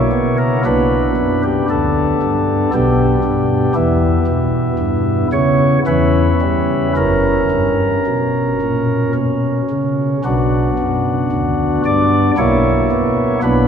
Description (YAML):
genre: classical, chorale-style piece for pipe organ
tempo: 56 BPM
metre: 3/4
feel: uneven beats, rubato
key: B minor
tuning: A4 = 440 Hz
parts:
  - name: pipe organ, flutes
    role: solo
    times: 0.0-13.7 s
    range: F#1 to D5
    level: -13 LUFS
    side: equal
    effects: none
room: wet cathedral reverb, RT60 5.3 s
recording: heard from further back in the room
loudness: -13 LUFS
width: side -7 dB against mid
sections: 0.0-13.7 A section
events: none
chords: 0.0 Bsus24; 0.7 Bm; 2.7 G/B; 3.8 Em; 7.0 F#; 10.3 Bm; 12.4 Bsus24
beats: | 0.65 1.70 2.74 | 3.76 4.79 5.87 | 6.96 8.06 9.16 | 10.25 11.33 12.39 | 13.43